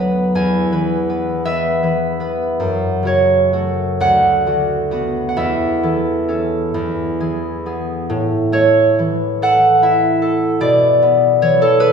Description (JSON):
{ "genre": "classical, solo harp piece", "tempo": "40-55 BPM (dotted quarters)", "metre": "6/8", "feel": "rubato", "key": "A major", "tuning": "A4 = 440 Hz", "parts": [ { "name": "concert harp", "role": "solo", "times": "0.0-11.9 s", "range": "D2 to A5", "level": "-14 LUFS", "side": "equal", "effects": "none" } ], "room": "wet recital hall reverb, RT60 1.5 s", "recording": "recorded in a church or concert hall", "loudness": "-14 LUFS", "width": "side -6 dB against mid", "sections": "0.0-8.1 A section; 8.1-11.9 A section", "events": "none", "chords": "0.4 E; 2.6 F#m; 4.0 Bm/D; 5.4 A/E; 6.7 E; 8.1 A; 10.6 E7(no3)/B" }